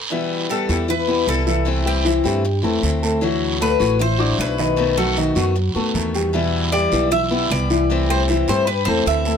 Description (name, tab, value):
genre	latin, Cuban son and guajira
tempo	154 BPM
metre	4/4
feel	straight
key	E minor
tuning	A4 = 444 Hz
part	picked acoustic archtop guitar	accompaniment	0.1-9.4 s	B2 to F#4	-24 LUFS	left 5 dB	none
part	dark concert grand piano	arpeggios	0.1-9.4 s	D#3 to D6	-22 LUFS	left 1 dB	none
part	guiro	percussion	0.1-9.4 s	none	-29 LUFS	right 5 dB	none
part	Cuban tres	melody	0.5-9.4 s	G4 to E5	-21 LUFS	left 3 dB	none
part	upright bass	bass	0.7-9.4 s	A1 to G2	-22 LUFS	right 1 dB	none
room	little or no reverb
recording	close, detailed microphones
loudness	-16 LUFS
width	side -7 dB against mid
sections	0.1-9.4 A section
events	Cuban tres solo 0.1-9.4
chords	0.1 Em; 1.7 C6; 3.2 Dadd9; 4.8 B7; 6.3 Em; 7.9 C6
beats	| 0.10 0.49 0.88 1.27 | 1.66 2.05 2.44 2.83 | 3.22 3.61 4.00 4.39 | 4.78 5.17 5.56 5.95 | 6.34 6.73 7.12 7.51 | 7.90 8.29 8.68 9.07